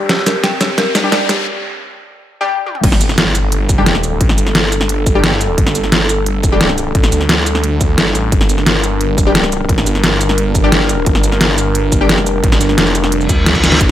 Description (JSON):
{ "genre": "dark technical drum and bass", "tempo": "175 BPM", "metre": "4/4", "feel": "straight", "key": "G minor", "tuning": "A4 = 441 Hz", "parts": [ { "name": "dark analog pad", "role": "sustained chords", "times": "0.0-13.9 s", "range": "G3 to A5", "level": "-20 LUFS", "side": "right 1 dB", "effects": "chorus, sidechain pumping" }, { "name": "orchestra-hit-like synth stab", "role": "stabs", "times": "0.0-6.7, 9.3-12.2 s", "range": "G3 to G4", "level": "-20 LUFS", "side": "left 3 dB", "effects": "built-in reverb, tape echo" }, { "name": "riser, impact and reverse cymbal", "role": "sound effects", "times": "0.0-4.2, 13.2-13.8 s", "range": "none", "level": "-21 LUFS", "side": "left 1 dB", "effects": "none" }, { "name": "dark detuned synth bell", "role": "arpeggios", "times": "0.1-1.4 s", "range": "G4 to G5", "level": "-20 LUFS", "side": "right 2 dB", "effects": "chorus, phaser, sidechain pumping, low-pass filter, tape echo" }, { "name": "dubstep drum kit", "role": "drums", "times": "0.1-13.9 s", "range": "crash cymbal, hi-hat, shaker, snare drum, toms", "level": "-14 LUFS", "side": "equal", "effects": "studio reverb" }, { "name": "snarling distorted saw bass", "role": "bass", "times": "2.8-13.9 s", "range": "F1 to D2", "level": "-16 LUFS", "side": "equal", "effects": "distortion, tube saturation" }, { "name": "electronic kick drum", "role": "drums", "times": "2.8-13.9 s", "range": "none", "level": "-15 LUFS", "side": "equal", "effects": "studio reverb" } ], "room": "light reverb", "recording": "high-pass filter", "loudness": "-11 LUFS", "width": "side -12 dB against mid", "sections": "0.0-2.8 A section; 2.8-13.9 B section", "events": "build-up 0.0-2.8; drum fill 0.0-1.5, 2.7, 13.6; riser 0.0-1.5; filter sweep on synth bell 0.0-2.8; filter sweep on synth stab 0.0-2.8; break 1.5-2.8; drop 2.8-13.9; impact 2.8-4.2; reverse cymbal 13.2-13.8", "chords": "0.0 Gsus2; 2.8 Gmadd9" }